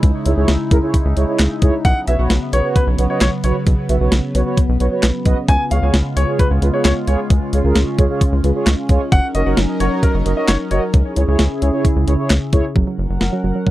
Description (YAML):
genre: synth-pop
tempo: 132 BPM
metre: 4/4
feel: straight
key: C# dorian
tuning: A4 = 440 Hz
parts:
  - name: chorused pulse-width pad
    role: sustained chords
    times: 0.0-13.7 s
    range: C#3 to F#5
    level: -22 LUFS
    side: equal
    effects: none
  - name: rubbery square bass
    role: bass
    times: 0.0-13.5 s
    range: F#1 to C#2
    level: -17 LUFS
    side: equal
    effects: none
  - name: clean 12-bit digital drum machine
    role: drums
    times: 0.0-13.7 s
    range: handclaps, hi-hat, kick drum, snare drum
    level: -16 LUFS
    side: equal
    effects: none
  - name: mellow synth brass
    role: accompaniment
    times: 0.3-12.6 s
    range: E4 to E5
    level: -21 LUFS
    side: right 3 dB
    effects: chorus
  - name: clear baby grand piano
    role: second line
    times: 1.8-10.8 s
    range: A#4 to G#5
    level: -22 LUFS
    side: left 2 dB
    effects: tape echo
  - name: soft round pluck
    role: arpeggios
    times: 12.8-13.7 s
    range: F#3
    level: -22 LUFS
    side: right 4 dB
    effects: chorus, tape echo
room: little or no reverb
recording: dark, warm production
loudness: -14 LUFS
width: side -15 dB against mid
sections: 0.0-12.8 A section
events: none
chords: 0.0 C#madd9; 1.8 Bsus2; 5.5 C#7; 9.1 F#6; 10.9 C#m; 12.8 F#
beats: | 0.03 0.48 0.94 1.39 | 1.85 2.30 2.76 3.21 | 3.67 4.12 4.58 5.03 | 5.49 5.94 6.39 6.85 | 7.30 7.76 8.21 8.67 | 9.12 9.58 10.03 10.48 | 10.94 11.39 11.85 12.30 | 12.76 13.21 13.67